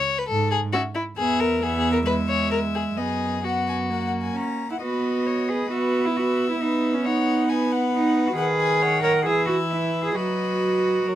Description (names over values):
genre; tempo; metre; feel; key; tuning
quick classical-period movement for string quartet; 135 BPM; 4/4; straight; B major; A4 = 441 Hz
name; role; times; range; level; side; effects
warm violin; second line; 0.0-11.2 s; E4 to C#5; -27 LUFS; left 4 dB; none
dark cello; bass; 0.3-11.2 s; E2 to A#4; -25 LUFS; right 2 dB; none
warm violin; melody; 0.7-11.2 s; C#5 to A#5; -30 LUFS; left 6 dB; none
warm viola; accompaniment; 0.7-11.2 s; D#3 to C#4; -26 LUFS; right 2 dB; none
room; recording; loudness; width
light reverb; close, detailed microphones; -20 LUFS; side -12 dB against mid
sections
0.0-4.8 A section; 4.8-11.2 B section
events
none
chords
0.0 N.C.; 1.2 E5; 2.1 E6; 3.0 B/F#; 3.9 F#; 4.8 B; 5.7 E5/B; 6.6 B; 8.4 B/D#; 9.3 E; 10.2 B/F#